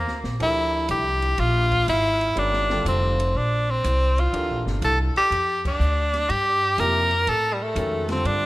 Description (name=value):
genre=modal jazz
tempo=122 BPM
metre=4/4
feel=swing 68% on 8ths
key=G dorian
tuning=A4 = 440 Hz
part: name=edgy tenor saxophone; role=melody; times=0.0-8.5 s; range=G3 to Bb4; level=-22 LUFS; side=equal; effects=none
part: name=upright bass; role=bass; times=0.0-8.5 s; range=F1 to A2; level=-25 LUFS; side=equal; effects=none
part: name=open jazz drum kit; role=drums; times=0.1-8.4 s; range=crash cymbal, hi-hat, kick drum, ride cymbal, snare drum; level=-36 LUFS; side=equal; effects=none
part: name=warm concert grand piano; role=accompaniment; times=0.4-8.5 s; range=C3 to Bb4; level=-32 LUFS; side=left 1 dB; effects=none
room=moderate lush hall reverb, RT60 2.3 s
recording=rough home demo mix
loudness=-20 LUFS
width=side -18 dB against mid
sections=0.0-8.5 A section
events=band accent 5.6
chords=0.0 Gm11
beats=| 0.40 0.89 1.39 1.88 | 2.37 2.86 3.35 3.84 | 4.33 4.82 5.31 5.80 | 6.29 6.78 7.27 7.76 | 8.25